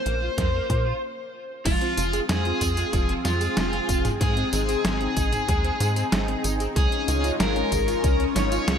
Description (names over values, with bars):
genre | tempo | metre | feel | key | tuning
synthwave | 94 BPM | 4/4 | straight | unclear | A4 = 440 Hz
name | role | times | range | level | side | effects
smooth overdriven lead guitar | melody | 0.0-8.8 s | F4 to Db5 | -27 LUFS | left 2 dB | digital delay
lush unison pad | sustained chords | 0.0-8.8 s | Ab3 to Db5 | -31 LUFS | left 1 dB | chorus, phaser, sidechain pumping
raw garage guitar | riff | 0.1-8.8 s | F3 to Db5 | -34 LUFS | equal | overdrive, analog chorus, ping-pong delay
tight sequencer bass | bass | 0.1-8.8 s | F1 to Bb2 | -26 LUFS | equal | none
detuned 8-bit digital drum machine | drums | 0.1-8.8 s | crash cymbal, hi-hat, snare drum, tambourine, toms | -29 LUFS | equal | overdrive
electronic kick drum | drums | 0.4-8.2 s | none | -26 LUFS | equal | none
soft round pluck | arpeggios | 1.7-8.8 s | Ab3 to Ab4 | -33 LUFS | right 1 dB | chorus, ping-pong delay
room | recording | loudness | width
light reverb | none | -21 LUFS | side -7 dB against mid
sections
0.0-1.7 A section; 1.7-8.8 B section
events
stop 1.0-1.7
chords
0.0 Bbmadd9; 1.7 Fm; 4.2 Ab; 6.8 Dbadd9